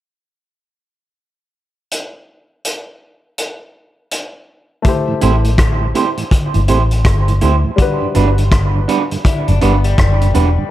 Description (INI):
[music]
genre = lovers rock reggae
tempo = 82 BPM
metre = 4/4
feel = swing 62% on 16ths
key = A dorian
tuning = A4 = 440 Hz
[part]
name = vintage drum kit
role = drums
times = 1.9-10.6 s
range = hi-hat, kick drum, rim click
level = -17 LUFS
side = equal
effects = gated reverb
[part]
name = warm baby grand piano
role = accompaniment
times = 4.8-10.7 s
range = G3 to C5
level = -23 LUFS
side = left 4 dB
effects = dub echo
[part]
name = mellow tonewheel organ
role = accompaniment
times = 5.1-10.6 s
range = G2 to G4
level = -22 LUFS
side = right 4 dB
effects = slow rotary speaker
[part]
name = electric guitar through a small old amp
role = stabs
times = 5.2-10.5 s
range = D4 to C5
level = -19 LUFS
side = right 6 dB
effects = dub echo
[part]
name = vintage muted fingered electric bass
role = bass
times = 5.2-10.6 s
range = E1 to D2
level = -13 LUFS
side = equal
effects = none
[part]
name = electric guitar through a small old amp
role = arpeggios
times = 9.2-10.7 s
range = G3 to E4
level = -22 LUFS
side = left 9 dB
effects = dub echo
[sound]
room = light reverb, small room ambience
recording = none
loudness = -12 LUFS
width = side -14 dB against mid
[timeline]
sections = 1.9-4.8 A section; 4.8-10.7 B section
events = none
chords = 1.9 N.C.; 4.8 Am7; 7.8 Gmaj7